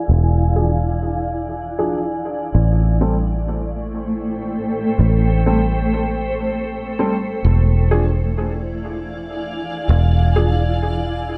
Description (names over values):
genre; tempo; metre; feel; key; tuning
ambient; 98 BPM; 4/4; straight; A minor; A4 = 442 Hz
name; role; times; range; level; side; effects
granular cloud pad; sustained chords; 0.0-11.4 s; A3 to G#5; -26 LUFS; equal; built-in reverb
fingered electric bass; bass; 0.0-11.4 s; E1 to A1; -19 LUFS; equal; tube saturation
dark upright piano; stabs; 0.6-10.5 s; F3 to A4; -27 LUFS; equal; dub echo
room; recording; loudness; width
light reverb, small room ambience; low-pass filter; -19 LUFS; mono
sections
0.0-11.4 A section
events
filter sweep 0.0-11.4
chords
0.0 E7b9; 2.5 Am7; 7.4 E7b9